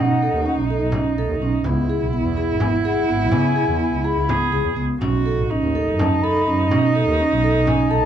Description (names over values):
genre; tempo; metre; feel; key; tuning
contemporary instrumental, chamber music in an uneven meter; 250 BPM (eighths); 7/8; straight; unclear; A4 = 440 Hz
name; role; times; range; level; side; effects
baroque flute; melody; 0.0-8.1 s; D#5 to B5; -25 LUFS; left 4 dB; none
dark cello; second line; 0.0-8.1 s; D#4 to G#4; -23 LUFS; right 2 dB; none
mellow woodwind section; sustained chords; 0.0-8.1 s; C#3 to E4; -31 LUFS; left 2 dB; none
vibraphone with medium mallets; arpeggios; 0.0-8.0 s; B3 to A4; -23 LUFS; right 1 dB; none
warm double bass; bass; 0.0-8.0 s; G#1 to C#3; -22 LUFS; right 2 dB; none
frame drum; percussion; 0.7-7.9 s; none; -28 LUFS; left 1 dB; none
room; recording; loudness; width
light reverb; dark, warm production; -17 LUFS; side -9 dB against mid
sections
0.0-8.1 A section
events
none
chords
0.0 B9; 1.7 C#m7; 5.0 B13